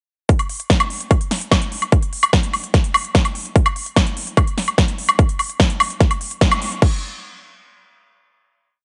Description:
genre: trance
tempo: 147 BPM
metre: 4/4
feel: straight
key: none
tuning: none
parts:
  - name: big-room dance drum kit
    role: drums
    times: 0.3-6.9 s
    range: crash cymbal, hi-hat, snare drum, woodblock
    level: -22 LUFS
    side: equal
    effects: overdrive
  - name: electronic kick drum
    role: drums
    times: 0.3-6.9 s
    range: none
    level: -18 LUFS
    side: equal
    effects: overdrive
room: light reverb, digital ambience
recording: nothing above 10.6 kHz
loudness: -18 LUFS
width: mono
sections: 0.3-6.8 drop; 6.8-8.5 final hit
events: drop 0.3-6.8; band accent 6.4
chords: none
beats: | 0.29 0.70 1.11 1.51 | 1.92 2.33 2.74 3.15 | 3.56 3.96 4.37 4.78 | 5.19 5.60 6.00 6.41 | 6.82

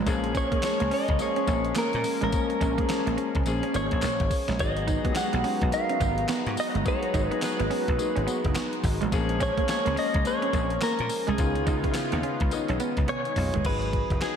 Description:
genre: R&B, new jack swing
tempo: 106 BPM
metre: 4/4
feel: swing 61% on 16ths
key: G# dorian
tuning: A4 = 438 Hz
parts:
  - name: warm baby grand piano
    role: accompaniment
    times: 0.0-14.4 s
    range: D#3 to G#5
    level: -32 LUFS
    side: left 5 dB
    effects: none
  - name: chorused pulse-width pad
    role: sustained chords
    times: 0.0-13.6 s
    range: C#3 to A#5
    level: -33 LUFS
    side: left 1 dB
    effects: none
  - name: clean electric guitar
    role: riff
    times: 0.0-13.6 s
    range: G#3 to D#4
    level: -33 LUFS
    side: right 6 dB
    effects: wide subtle chorus
  - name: dry thumbed slap bass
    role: bass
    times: 0.0-14.2 s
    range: F#1 to A#2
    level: -29 LUFS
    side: equal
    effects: none
  - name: clean 12-bit digital drum machine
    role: drums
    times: 0.1-14.4 s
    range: crash cymbal, handclaps, hi-hat, kick drum, snare drum, tambourine, toms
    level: -30 LUFS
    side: equal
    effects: none
  - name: direct-recorded clean electric guitar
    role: melody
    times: 0.4-14.4 s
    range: G#4 to F#5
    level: -29 LUFS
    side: equal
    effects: wide subtle chorus, diffuse ambient delay
room: wet lush hall reverb, RT60 1.6 s, digital ambience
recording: dreamy mix soaked in reverb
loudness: -24 LUFS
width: side -7 dB against mid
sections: 0.0-13.6 A section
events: grand piano fill 12.8-13.6; drum fill 13.1-13.6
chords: 0.1 A#m7; 4.6 G#m7; 9.1 A#m7; 11.4 C#9; 13.6 G#m7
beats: | 0.06 0.63 1.20 1.76 | 2.33 2.89 3.46 4.03 | 4.59 5.16 5.72 6.29 | 6.86 7.42 7.99 8.55 | 9.12 9.69 10.25 10.82 | 11.38 11.95 12.52 13.08 | 13.65 14.21

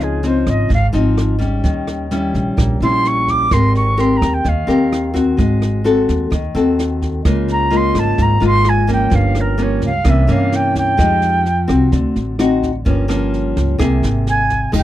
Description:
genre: bossa nova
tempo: 128 BPM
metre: 4/4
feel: straight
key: unclear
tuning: A4 = 440 Hz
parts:
  - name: jazz flute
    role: melody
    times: 0.0-14.8 s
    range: Ab4 to D6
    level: -18 LUFS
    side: right 1 dB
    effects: none
  - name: nylon-string guitar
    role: accompaniment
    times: 0.0-14.8 s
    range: G2 to Bb4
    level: -17 LUFS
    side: left 2 dB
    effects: none
  - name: upright bass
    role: bass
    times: 0.0-14.8 s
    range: F1 to G2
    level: -18 LUFS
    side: right 1 dB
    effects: none
  - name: jazz brush drum kit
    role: drums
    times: 0.0-14.8 s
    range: crash cymbal, kick drum, rim click, snare drum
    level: -22 LUFS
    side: right 1 dB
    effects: none
room: little or no reverb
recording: dry, close 1970s-style studio recording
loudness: -13 LUFS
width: side -13 dB against mid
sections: 0.0-14.7 A section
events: flute solo 0.0-14.7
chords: 0.0 Dbmaj9; 1.6 Eb7b9; 3.5 Abmaj9; 5.4 Ab7b9; 7.2 Db6; 9.1 Gm7b5; 10.0 C7b9; 11.0 Fm9; 11.9 D7b9; 12.9 Gm7b5; 13.8 Caug7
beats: 0.23 0.70 1.17 | 1.64 2.10 2.57 3.04 | 3.51 3.97 4.44 4.91 | 5.38 5.84 6.31 6.78 | 7.25 7.71 8.18 8.65 | 9.11 9.58 10.05 10.52 | 10.98 11.45 11.92 12.38 | 12.85 13.32 13.79 14.26 | 14.72

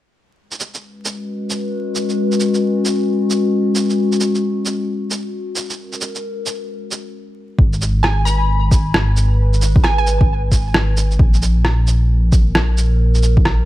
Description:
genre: future garage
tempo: 133 BPM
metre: 4/4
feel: swing 63% on 16ths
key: G# minor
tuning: A4 = 436 Hz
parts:
  - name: warbly tape-like pad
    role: sustained chords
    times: 1.1-13.7 s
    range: G#3 to B4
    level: -20 LUFS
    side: left 2 dB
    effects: chorus, built-in reverb, sidechain pumping
  - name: electronic shaker and rim click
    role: drums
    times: 0.5-13.6 s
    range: none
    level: -21 LUFS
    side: right 1 dB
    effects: overdrive
  - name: dark detuned saw bass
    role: bass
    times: 7.6-13.7 s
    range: G#1 to A#1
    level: -15 LUFS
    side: equal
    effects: sidechain pumping
  - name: electronic kick drum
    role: drums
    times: 7.6-13.4 s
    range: none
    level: -14 LUFS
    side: equal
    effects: none
  - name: glassy wavetable pluck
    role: melody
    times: 8.0-10.0 s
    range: G#5 to B5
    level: -23 LUFS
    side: right 2 dB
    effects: chorus, dub echo
room: moderate lush hall reverb, RT60 1.6 s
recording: vinyl crackle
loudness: -14 LUFS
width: side -15 dB against mid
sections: 0.4-7.6 A section; 7.6-13.7 B section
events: break 7.1-7.6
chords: 0.4 G#m; 4.0 G#9sus4; 7.6 G#m; 11.2 N.C.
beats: | 0.37 0.82 1.27 1.72 | 2.17 2.62 3.08 3.53 | 3.98 4.43 4.88 5.33 | 5.78 6.23 6.69 7.14 | 7.59 8.04 8.49 8.94 | 9.39 9.84 10.29 10.75 | 11.20 11.65 12.10 12.55 | 13.00 13.45

